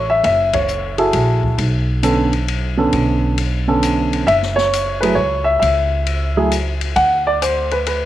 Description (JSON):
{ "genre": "jazz piano trio", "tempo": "134 BPM", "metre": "3/4", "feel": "swing 66% on 8ths", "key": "F# minor", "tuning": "A4 = 441 Hz", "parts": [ { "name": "warm baby grand piano", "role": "melody", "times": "0.0-8.1 s", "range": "D3 to F#5", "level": "-16 LUFS", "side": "equal", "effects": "none" }, { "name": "upright bass", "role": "bass", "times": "0.0-8.1 s", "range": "F#1 to D2", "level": "-20 LUFS", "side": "equal", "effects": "none" }, { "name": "open jazz drum kit", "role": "drums", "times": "0.2-8.0 s", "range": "hi-hat, kick drum, ride cymbal, snare drum", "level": "-26 LUFS", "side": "left 7 dB", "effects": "none" } ], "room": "moderate spring reverb, RT60 2.4 s", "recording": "1960s-style stereo", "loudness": "-14 LUFS", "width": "side -13 dB against mid", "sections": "0.0-8.1 A section", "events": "band accent 0.5", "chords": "0.0 F#m9; 1.6 Bm9; 4.3 F#7(no3); 7.0 D6", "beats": "| 0.24 0.69 1.14 | 1.59 2.04 2.48 | 2.93 3.38 3.83 | 4.28 4.73 5.17 | 5.62 6.07 6.52 | 6.97 7.42 7.87" }